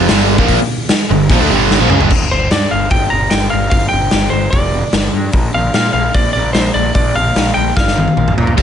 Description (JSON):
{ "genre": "hard rock", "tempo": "148 BPM", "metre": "4/4", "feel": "straight", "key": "G minor", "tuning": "A4 = 440 Hz", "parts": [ { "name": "biting overdriven guitar", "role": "riff", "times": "0.0-2.1, 8.6 s", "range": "G2 to C4", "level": "-14 LUFS", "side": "right 11 dB", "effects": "none" }, { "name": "cranked stack guitar", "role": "riff", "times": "0.0-2.1, 8.6 s", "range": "G2 to C4", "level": "-18 LUFS", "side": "left 14 dB", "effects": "overdrive" }, { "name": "fuzz picked electric bass", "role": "bass", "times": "0.0-8.6 s", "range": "F1 to Bb2", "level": "-17 LUFS", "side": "equal", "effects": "overdrive" }, { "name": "raw garage drum kit", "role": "drums", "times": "0.1-8.6 s", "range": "crash cymbal, hi-hat, kick drum, snare drum, toms", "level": "-15 LUFS", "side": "left 1 dB", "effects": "none" }, { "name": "lightly driven lead guitar", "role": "melody", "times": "2.3-8.3 s", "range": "C5 to Bb5", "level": "-17 LUFS", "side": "equal", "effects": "none" } ], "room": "light reverb, small room ambience", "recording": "nothing above 10.5 kHz", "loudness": "-11 LUFS", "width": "side -9 dB against mid", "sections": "0.0-2.1 A section; 2.1-8.6 B section", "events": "drum fill 1.7-2.1, 7.8-8.6", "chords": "0.0 Gm; 2.1 G5; 5.3 Bb5" }